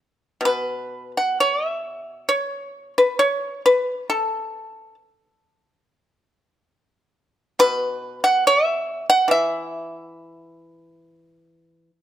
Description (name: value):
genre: chinese traditional, Chinese solo plucked strings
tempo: 61-71 BPM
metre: 4/4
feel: rubato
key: E zhi mode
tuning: A4 = 442 Hz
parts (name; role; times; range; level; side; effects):
- pipa; solo; 0.4-12.0 s; B2 to F#5; -19 LUFS; equal; none
room: light reverb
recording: close, detailed microphones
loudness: -19 LUFS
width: side -11 dB against mid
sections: 0.4-12.0 A section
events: none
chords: none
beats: | 0.44 1.38 2.30 3.20 | 4.10 4.98 5.86 6.74 | 7.59 8.44 9.29 10.15 | 11.03 11.90